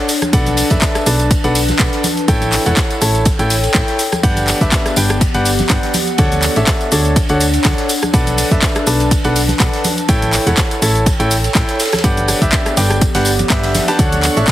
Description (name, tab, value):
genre	piano house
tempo	123 BPM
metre	4/4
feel	swing 55% on 16ths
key	D major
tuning	A4 = 440 Hz
part	clear concert grand piano	riff	0.0-14.5 s	D4 to A5	-18 LUFS	equal	sidechain pumping
part	warbly tape-like pad	texture	0.0-14.5 s	B3 to A5	-22 LUFS	left 1 dB	chorus, built-in reverb, sidechain pumping
part	house drum kit	drums	0.1-14.5 s	handclaps, hi-hat, rim click, shaker	-19 LUFS	left 1 dB	overdrive
part	oversized low-tuned drum kit	drums	0.1-14.5 s	ride cymbal, snare drum	-26 LUFS	right 2 dB	sidechain pumping on cymbals, high-pass filter on cymbals, high-pass filter on snare, high-pass filter on room
part	tambourine and congas	percussion	0.1-14.5 s	none	-24 LUFS	right 1 dB	none
part	solid FM bass	bass	0.3-14.4 s	D1 to D2	-18 LUFS	equal	sidechain pumping
part	electronic kick drum	drums	0.3-14.5 s	none	-16 LUFS	equal	overdrive
part	rich chamber string section	sustained chords	14.0-14.5 s	D4 to F#6	-21 LUFS	right 2 dB	sidechain pumping
room	light reverb, small room reverb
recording	heavily compressed radio sound, multiband compression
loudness	-12 LUFS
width	side -14 dB against mid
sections	0.0-14.5 A section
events	none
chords	0.3 Bm7; 2.3 A7; 4.2 Gmaj7; 6.2 Dmaj7; 8.1 Bm7; 10.1 A7; 12.0 Gmaj7; 14.0 Dmaj7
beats	| 0.33 0.82 1.31 1.80 | 2.28 2.77 3.26 3.75 | 4.24 4.72 5.21 5.70 | 6.19 6.67 7.16 7.65 | 8.14 8.62 9.11 9.60 | 10.09 10.58 11.06 11.55 | 12.04 12.53 13.02 13.50 | 13.99 14.48